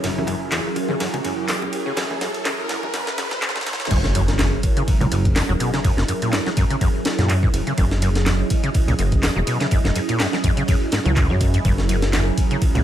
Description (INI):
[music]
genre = breakbeat, breaks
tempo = 124 BPM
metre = 4/4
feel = swing 55% on 16ths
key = unclear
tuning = A4 = 440 Hz
[part]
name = phased analog pad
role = sustained chords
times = 0.0-12.8 s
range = F#3 to D#5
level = -26 LUFS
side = right 2 dB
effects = phaser, chorus, sidechain pumping
[part]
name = overdriven acid bass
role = riff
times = 0.0-12.8 s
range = E2 to F#3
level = -25 LUFS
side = equal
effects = distortion, wide subtle chorus, ping-pong delay
[part]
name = fat analog bass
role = bass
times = 0.0-12.8 s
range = E1 to F#2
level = -21 LUFS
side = equal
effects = none
[part]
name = breakbeat sampler-style drum kit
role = drums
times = 0.0-12.8 s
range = crash cymbal, hi-hat, kick drum, ride cymbal, snare drum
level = -22 LUFS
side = equal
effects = high-pass filter on snare, high-pass filter on cymbals, high-pass filter on kick, high-pass filter on hats
[part]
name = riser and impact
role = sound effects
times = 0.0-5.8 s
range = none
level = -28 LUFS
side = equal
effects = none
[part]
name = congas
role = percussion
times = 0.2-3.8 s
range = none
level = -32 LUFS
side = left 2 dB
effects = none
[part]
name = punchy analog drum machine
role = drums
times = 0.5-12.7 s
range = handclaps, hi-hat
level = -28 LUFS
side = equal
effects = none
[sound]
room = little or no reverb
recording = high-pass filter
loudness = -18 LUFS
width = side -11 dB against mid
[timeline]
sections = 0.0-3.9 A section; 3.9-12.8 B section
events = build-up 0.0-3.9; riser 0.0-3.9; filter sweep on acid bass 0.0-3.9; filter sweep 0.0-3.9; drum fill 0.0-3.9; drop 3.9-12.8; impact 3.9-5.8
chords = 0.0 F#7